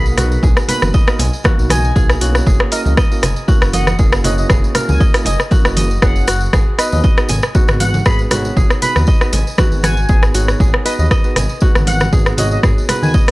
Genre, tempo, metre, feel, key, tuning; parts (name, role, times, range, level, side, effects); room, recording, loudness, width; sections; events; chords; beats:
afro house; 118 BPM; 4/4; swing 54% on 16ths; G# minor; A4 = 440 Hz
expressive synth lead; melody; 0.0-13.1 s; D#5 to B5; -24 LUFS; equal; wide subtle chorus, analog delay
kora; arpeggios; 0.0-13.3 s; F#4 to G#5; -23 LUFS; equal; sidechain pumping
tine electric piano; stabs; 0.0-13.3 s; A#3 to C#5; -24 LUFS; right 3 dB; sidechain pumping, analog delay
smooth synth bass; bass; 0.0-13.1 s; F#1 to D#2; -17 LUFS; equal; transformer saturation, sidechain pumping
tambourine; percussion; 0.1-13.3 s; -28 LUFS; right 1 dB
afro-pop drum kit; drums; 0.2-13.3 s; hi-hat, rim click, toms; -18 LUFS; equal; small room ambience
congas; percussion; 0.2-13.1 s; -24 LUFS; right 1 dB
electronic kick drum; drums; 0.4-13.3 s; -13 LUFS; equal; small room ambience
digital ambience; dry, gritty hardware recording, cassette tape; -11 LUFS; side -20 dB against mid
0.0-13.3 A section
0.0 Bmaj7; 2.5 F#7; 6.5 G#m7
| 0.43 0.94 1.45 1.96 | 2.47 2.97 3.48 3.99 | 4.50 5.01 5.52 6.03 | 6.53 7.04 7.55 8.06 | 8.57 9.08 9.58 10.09 | 10.60 11.11 11.62 12.13 | 12.63 13.14